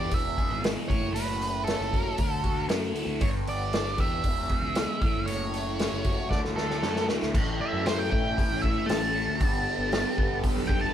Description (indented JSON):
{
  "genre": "psychedelic rock",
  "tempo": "116 BPM",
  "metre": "4/4",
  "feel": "straight",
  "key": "A mixolydian",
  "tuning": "A4 = 441 Hz",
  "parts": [
    { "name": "octave-fuzz lead guitar", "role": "melody", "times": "0.0-10.9 s", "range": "A4 to A5", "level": "-31 LUFS", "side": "right 2 dB", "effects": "distortion" },
    { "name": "fuzz guitar", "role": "riff", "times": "0.0-10.9 s", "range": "E2 to G#4", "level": "-32 LUFS", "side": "left 2 dB", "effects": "distortion, phaser" },
    { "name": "fuzz fingered electric bass", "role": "bass", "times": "0.0-10.9 s", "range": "E1 to A2", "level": "-34 LUFS", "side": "left 1 dB", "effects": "overdrive" },
    { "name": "vintage drum kit", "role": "drums", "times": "0.1-10.8 s", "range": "crash cymbal, hi-hat, kick drum, snare drum", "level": "-28 LUFS", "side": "equal", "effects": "none" },
    { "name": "string machine, violins", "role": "sustained chords", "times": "7.3-10.9 s", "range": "B3 to A4", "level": "-34 LUFS", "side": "right 2 dB", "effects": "ensemble chorus" }
  ],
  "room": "light reverb",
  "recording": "band playing live in one room",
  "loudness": "-25 LUFS",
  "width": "side -10 dB against mid",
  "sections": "0.0-7.3 A section; 7.3-10.9 B section",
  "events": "drum fill 6.3-7.3; lead electric guitar solo 7.3-10.9",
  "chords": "0.1 E; 0.9 A6; 2.2 Dadd9; 3.2 G; 4.3 E; 5.0 A6; 6.3 Dadd9; 7.3 A; 9.4 Gadd9"
}